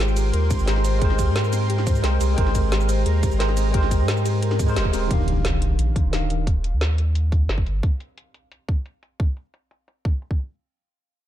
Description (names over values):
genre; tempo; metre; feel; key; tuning
liquid drum and bass; 176 BPM; 4/4; straight; Eb major; A4 = 441 Hz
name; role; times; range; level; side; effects
tine electric piano; accompaniment; 0.0-6.5 s; Eb3 to G5; -26 LUFS; equal; overdrive, medium stereo tremolo, dub echo
lush unison pad; sustained chords; 0.0-5.1 s; Bb4 to C6; -35 LUFS; equal; chorus, phaser
kalimba; arpeggios; 0.0-5.0 s; C4 to C5; -31 LUFS; left 4 dB; vintage 12-bit sampler grit, ping-pong delay
warm sub bass; bass; 0.0-7.8 s; Eb1 to Ab2; -21 LUFS; equal; none
drum and bass drum kit; drums; 0.1-10.5 s; hi-hat, ride cymbal, shaker, snare drum; -30 LUFS; equal; low-pass filter on hats, low-pass filter on snare, low-pass filter on cymbals, low-pass filter on perc, low-pass filter on room
electronic kick drum; drums; 0.5-10.4 s; none; -21 LUFS; equal; none
impact; sound effects; 5.1-6.5 s; none; -27 LUFS; right 1 dB; none
room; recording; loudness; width
little or no reverb; dark, warm production; -19 LUFS; side -12 dB against mid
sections
0.0-5.1 A section; 5.1-10.6 B section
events
drop 0.0-5.1; band accent 4.8; impact 5.1-6.5; filter sweep on drum 5.1-10.6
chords
0.0 Abmaj9; 5.1 Ebmaj9